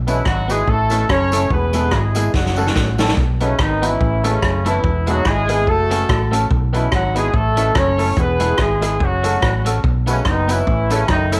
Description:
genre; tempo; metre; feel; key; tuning
ska; 144 BPM; 4/4; swing 56% on 8ths; B mixolydian; A4 = 438 Hz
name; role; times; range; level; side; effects
hollow-body short-scale fingered electric bass; bass; 0.0-11.4 s; E1 to B1; -22 LUFS; equal; none
warm horn section; melody; 0.1-11.4 s; C#3 to C#5; -22 LUFS; equal; none
clean electric guitar; accompaniment; 0.1-11.4 s; G#3 to B4; -32 LUFS; equal; none
warm upright piano; stabs; 0.1-11.4 s; G#3 to B4; -27 LUFS; equal; tape echo
swinging big-band drum kit; drums; 0.1-11.4 s; hi-hat, kick drum, rim click, snare drum; -23 LUFS; equal; none
tambourine; percussion; 0.1-3.1, 10.1-11.4 s; none; -40 LUFS; equal; none
room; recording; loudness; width
light reverb, studio ambience; none; -17 LUFS; mono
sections
0.0-3.2 A section; 3.2-11.4 A section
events
drum fill 2.3-3.2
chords
0.0 B; 0.7 A; 1.5 E; 2.3 F#m; 2.8 A; 3.2 B; 4.0 A; 4.8 E; 5.7 F#m; 6.5 B; 7.3 A; 8.2 E; 9.0 F#m; 9.8 B; 10.7 A

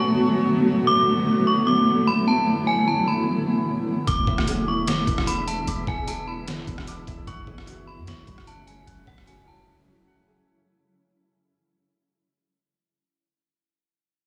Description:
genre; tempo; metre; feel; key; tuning
hip hop, atmospheric cloud-rap; 150 BPM; 4/4; half-time; unclear; A4 = 445 Hz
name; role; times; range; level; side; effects
metallic FM bell; melody; 0.0-10.4 s; F#5 to D6; -27 LUFS; equal; chorus, low-pass filter, digital delay
granular cloud pad; sustained chords; 0.0-10.4 s; C#3 to F#4; -24 LUFS; equal; built-in reverb, sidechain pumping
concert harp; arpeggios; 4.1-12.6 s; E3 to D6; -39 LUFS; equal; low-pass filter, digital delay
soft 808-style bass; bass; 4.1-9.7 s; E1 to F#2; -37 LUFS; equal; none
trip hop sampler-style drum kit; drums; 4.1-9.4 s; hi-hat, kick drum, rim click, snare drum; -31 LUFS; equal; overdrive
wind-like tuned noise texture; texture; 4.7-10.4 s; G#3 to E5; -45 LUFS; equal; built-in reverb
room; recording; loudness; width
moderate digital room reverb, RT60 1.1 s; small room ambience; -22 LUFS; mono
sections
0.0-10.5 A section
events
fade-out 0.0-10.5; break 9.7-10.5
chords
0.0 Bm7; 0.9 D69; 4.1 E7; 7.3 F#m9

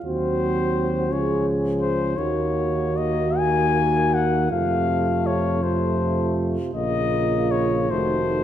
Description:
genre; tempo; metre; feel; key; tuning
classical, hymn-like piece for brass band; 47-57 BPM (dotted quarters); 6/8; rubato; unclear; A4 = 439 Hz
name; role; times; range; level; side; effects
dark French horn section; second line; 0.0-8.4 s; F4 to Ab4; -26 LUFS; right 4 dB; none
clear euphonium; accompaniment; 0.0-8.4 s; A3 to Db4; -29 LUFS; left 2 dB; none
dark tuba; bass; 0.0-8.4 s; F1 to F2; -26 LUFS; right 1 dB; none
warm cornet; melody; 0.1-8.4 s; C5 to Ab5; -25 LUFS; left 6 dB; none
warm trombone; accompaniment; 0.1-8.4 s; C3 to Gb3; -29 LUFS; right 2 dB; none
room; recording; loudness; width
moderate concert hall reverb, RT60 2.4 s; none; -20 LUFS; side -10 dB against mid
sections
0.0-8.4 A section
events
none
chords
0.0 Cdim/Eb; 1.1 Db; 2.2 Ebm7; 4.5 F; 6.7 Bbm; 7.9 F7b9

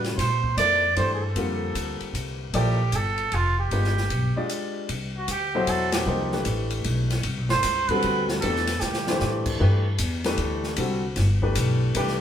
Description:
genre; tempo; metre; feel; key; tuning
modal jazz; 153 BPM; 3/4; swing 65% on 8ths; C lydian from 4.9 s; A4 = 441 Hz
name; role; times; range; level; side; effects
warm trumpet; melody; 0.0-9.5, 12.0-12.2 s; F4 to D5; -26 LUFS; right 4 dB; none
clear baby grand piano; accompaniment; 0.0-12.2 s; B2 to D5; -28 LUFS; left 2 dB; none
upright bass; bass; 0.0-12.2 s; F1 to Bb2; -25 LUFS; equal; none
open jazz drum kit; drums; 0.0-12.2 s; crash cymbal, hi-hat, kick drum, ride cymbal, snare drum; -31 LUFS; left 2 dB; none
room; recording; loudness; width
wet stone room reverb, RT60 1.1 s; band playing live in one room; -22 LUFS; side -9 dB against mid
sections
0.0-4.9 A section; 4.9-12.2 B section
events
break 4.5-4.9; band accent 5.9; drum fill 8.8-9.2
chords
0.2 Bbmaj9; 3.7 G7b9; 4.9 Cmaj9

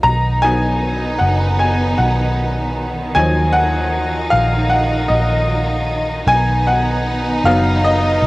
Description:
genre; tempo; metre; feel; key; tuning
pop ballad; 77 BPM; 4/4; straight; unclear; A4 = 439 Hz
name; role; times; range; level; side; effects
clear upright piano; accompaniment; 0.0-8.3 s; E#3 to A#5; -17 LUFS; left 1 dB; cassette tape
bright studio string section; sustained chords; 0.0-8.3 s; D#3 to D#4; -21 LUFS; right 1 dB; cassette tape
vintage muted fingered electric bass; bass; 0.0-8.3 s; F#1 to D#2; -18 LUFS; equal; none
room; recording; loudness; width
light reverb; home recording on cassette; -14 LUFS; side -20 dB against mid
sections
0.0-8.3 A section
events
upright piano solo 0.0-8.3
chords
0.0 B; 3.2 D#madd9; 6.3 B

